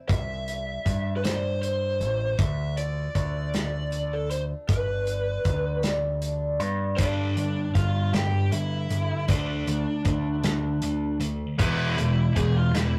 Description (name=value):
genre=quiet-loud alternative rock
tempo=52 BPM (dotted quarters)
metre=6/8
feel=straight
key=unclear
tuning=A4 = 440 Hz
part: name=picked old ladder-braced acoustic guitar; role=arpeggios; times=0.0-11.6 s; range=G2 to E4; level=-38 LUFS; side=equal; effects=none
part: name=lead guitar through a small cranked amp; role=melody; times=0.1-13.0 s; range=D4 to G#5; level=-32 LUFS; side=equal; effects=overdrive
part: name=growling picked electric bass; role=bass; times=0.1-13.0 s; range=G1 to G2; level=-32 LUFS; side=equal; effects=overdrive
part: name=loose indie drum kit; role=drums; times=0.1-12.9 s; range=hi-hat, kick drum, snare drum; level=-29 LUFS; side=equal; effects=none
part: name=sludgy distorted guitar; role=riff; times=7.0-13.0 s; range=E2 to D4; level=-30 LUFS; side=equal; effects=overdrive
part: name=high-gain distorted guitar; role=riff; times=11.6-13.0 s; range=E3 to B3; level=-29 LUFS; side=equal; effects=distortion
room=moderate booth ambience, RT60 0.2 s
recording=rough rehearsal-room recording, warm saturation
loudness=-26 LUFS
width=mono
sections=0.0-7.0 A section; 7.0-13.0 B section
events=none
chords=0.1 C; 2.4 Dm; 4.7 G; 7.0 G5; 9.3 Dm; 11.6 E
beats=| 0.09 1.24 | 2.39 3.54 | 4.69 5.84 | 6.99 8.14 | 9.29 10.44 | 11.59 12.74